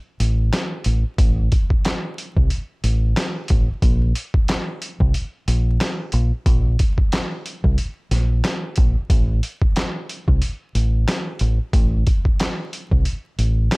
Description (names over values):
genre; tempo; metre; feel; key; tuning
hip hop, boom-bap hip-hop; 91 BPM; 4/4; swing 58% on 16ths; unclear; A4 = 440 Hz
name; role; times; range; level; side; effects
deep dub fingered electric bass; bass; 0.2-13.7 s; A1 to C2; -18 LUFS; equal; none
trip hop sampler-style drum kit; drums; 0.2-13.8 s; handclaps, hi-hat, kick drum, snare drum; -19 LUFS; equal; none
room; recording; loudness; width
little or no reverb; vinyl crackle; -18 LUFS; side -29 dB against mid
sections
0.0-13.8 A section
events
none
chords
none